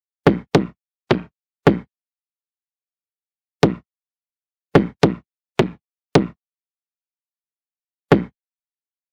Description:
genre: glitch hop.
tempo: 107 BPM.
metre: 4/4.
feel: swing 62% on 16ths.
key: none.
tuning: none.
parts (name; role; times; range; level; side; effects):
electronic kick drum; drums; 0.3-8.3 s; none; -16 LUFS; equal; overdrive, high-pass filter on kick.
room: little or no reverb.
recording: none.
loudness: -20 LUFS.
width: mono.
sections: 0.3-9.1 A section.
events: stop 8.7-9.1.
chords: none.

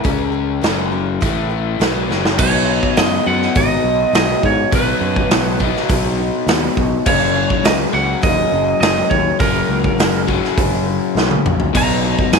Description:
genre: classic rock.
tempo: 103 BPM.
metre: 4/4.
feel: straight.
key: unclear.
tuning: A4 = 443 Hz.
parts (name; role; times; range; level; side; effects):
lightly driven lead guitar; melody; 0.0-12.4 s; A#4 to A#5; -19 LUFS; right 4 dB; slapback echo.
picked steel-string acoustic guitar; accompaniment; 0.0-12.4 s; F#2 to E5; -26 LUFS; right 14 dB; none.
crunchy overdriven guitar; riff; 0.0-12.4 s; F#2 to C#4; -20 LUFS; left 15 dB; none.
growling fingered electric bass; bass; 0.0-12.4 s; F#1 to G#2; -22 LUFS; right 1 dB; overdrive.
big rock drum kit; drums; 0.0-12.4 s; crash cymbal, hi-hat, kick drum, snare drum, toms; -18 LUFS; right 1 dB; none.
room: light reverb.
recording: 1960s-style stereo with parts hard left and right.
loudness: -14 LUFS.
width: side -5 dB against mid.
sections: 0.0-2.4 A section; 2.4-12.4 B section.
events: drum fill 2.1, 11.2-11.7.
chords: 0.0 C#5; 0.6 F#; 1.2 A5; 1.8 F#; 2.4 B; 7.1 F#; 11.7 B.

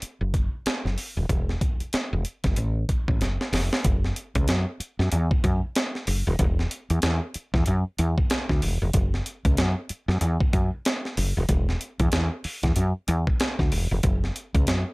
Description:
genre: funk.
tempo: 94 BPM.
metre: 4/4.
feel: swing 60% on 16ths.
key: unclear.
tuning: A4 = 440 Hz.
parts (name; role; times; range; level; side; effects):
woody fretless electric bass; bass; 0.0-14.8 s; D#1 to F#2; -24 LUFS; equal; none.
breakbeat sampler-style drum kit; drums; 0.0-14.9 s; hi-hat, kick drum, snare drum; -25 LUFS; equal; none.
room: little or no reverb.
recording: none.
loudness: -22 LUFS.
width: side -28 dB against mid.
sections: 0.0-3.8 A section; 3.8-14.9 B section.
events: drum fill 3.2-3.8.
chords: none.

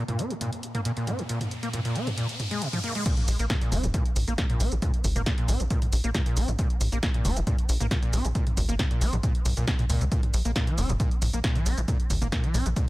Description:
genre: driving peak-time techno.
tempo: 136 BPM.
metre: 4/4.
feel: straight.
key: Bb minor.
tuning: A4 = 440 Hz.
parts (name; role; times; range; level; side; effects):
overdriven acid bass; riff; 0.0-12.9 s; Bb2 to Db4; -31 LUFS; equal; distortion, analog chorus, sidechain pumping, tape echo.
deep dark ambient pad; drone; 0.0-3.1 s; Bb2 to Bb3; -39 LUFS; equal; chorus, built-in reverb, sidechain pumping.
riser; sound effects; 0.3-3.1 s; none; -37 LUFS; left 1 dB; none.
punchy analog drum machine; drums; 0.1-12.9 s; crash cymbal, hi-hat, shaker, snare drum, toms; -32 LUFS; equal; none.
electronic kick drum; drums; 3.1-12.9 s; none; -26 LUFS; equal; none.
tight sequencer bass; bass; 3.3-12.7 s; F1 to Db2; -26 LUFS; equal; sidechain pumping.
room: little or no reverb.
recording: none.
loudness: -24 LUFS.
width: side -18 dB against mid.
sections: 0.0-3.1 A section; 3.1-12.9 B section.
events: filter sweep on acid bass 0.0-3.1; riser 0.3-3.1; drop 3.1-12.9.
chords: 0.0 Bbm.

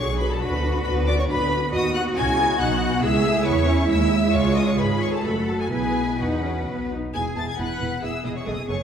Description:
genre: quick classical-period movement for string orchestra.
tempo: 136 BPM.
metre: 3/4.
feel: rubato.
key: E major.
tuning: A4 = 440 Hz.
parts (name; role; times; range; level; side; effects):
rich symphonic violin section; melody; 0.0-8.8 s; F#5 to A6; -30 LUFS; left 3 dB; none.
warm symphonic violin section; second line; 0.0-8.8 s; F#4 to A5; -27 LUFS; left 2 dB; none.
dark symphonic viola section; accompaniment; 0.0-8.8 s; D3 to A4; -24 LUFS; right 1 dB; none.
rich studio double bass section; bass; 0.0-8.8 s; E1 to E2; -26 LUFS; right 1 dB; none.
rich symphonic cello section; bass; 0.0-8.8 s; E4 to B4; -29 LUFS; right 2 dB; none.
room: wet scoring stage reverb, RT60 1.6 s.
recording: heard from further back in the room.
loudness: -20 LUFS.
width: side -8 dB against mid.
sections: 0.0-7.1 A section; 7.1-8.8 B section.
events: none.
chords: 0.4 Bm/D; 1.7 B; 3.0 C#m; 4.3 C#; 5.2 F#m; 5.7 Bsus4; 6.7 B; 7.1 E.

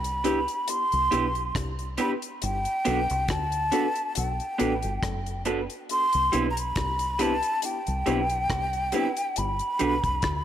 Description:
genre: lovers rock reggae.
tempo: 69 BPM.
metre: 4/4.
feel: swing 55% on 16ths.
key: unclear.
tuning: A4 = 436 Hz.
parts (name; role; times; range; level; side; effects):
breathy concert flute; melody; 0.0-10.4 s; G5 to C6; -27 LUFS; equal; tape echo.
deep dub fingered electric bass; bass; 0.0-10.4 s; F#1 to D2; -31 LUFS; equal; none.
deep reggae drum kit; drums; 0.0-10.4 s; hi-hat, kick drum, rim click; -33 LUFS; left 2 dB; none.
mellow tine electric piano; accompaniment; 0.2-9.9 s; B3 to A4; -33 LUFS; left 3 dB; slow stereo tremolo, dub echo.
electric guitar through a small old amp; stabs; 0.2-9.9 s; G3 to B4; -31 LUFS; right 5 dB; none.
room: light reverb, studio ambience.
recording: none.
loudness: -24 LUFS.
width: side -10 dB against mid.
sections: 0.0-10.4 A section.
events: none.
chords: 0.0 Cmaj7; 2.4 Gmaj7; 5.9 Cmaj7; 9.4 Gmaj7.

